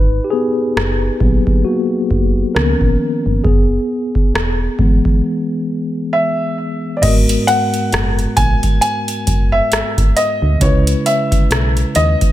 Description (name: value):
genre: contemporary R&B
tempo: 67 BPM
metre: 4/4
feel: swing 58% on 16ths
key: G# minor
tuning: A4 = 441 Hz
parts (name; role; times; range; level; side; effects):
- mellow tine electric piano; accompaniment; 0.0-12.3 s; G#2 to B4; -18 LUFS; left 2 dB; medium stereo tremolo
- solid FM bass; bass; 0.0-12.2 s; E1 to D#2; -17 LUFS; equal; none
- booming analog drum machine; drums; 0.8-12.3 s; crash cymbal, hi-hat, kick drum, rim click; -16 LUFS; equal; none
- dark baby grand piano; melody; 6.1-12.3 s; C#5 to G#5; -18 LUFS; equal; ping-pong delay
room: little or no reverb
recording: none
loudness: -13 LUFS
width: side -14 dB against mid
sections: 0.0-7.0 A section; 7.0-12.3 B section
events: tine electric piano solo 0.0-7.0; break 5.2-7.0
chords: 0.0 G#m9; 2.6 C#13; 3.4 F#9sus4 (rootless); 7.0 G#m9; 10.6 C#m9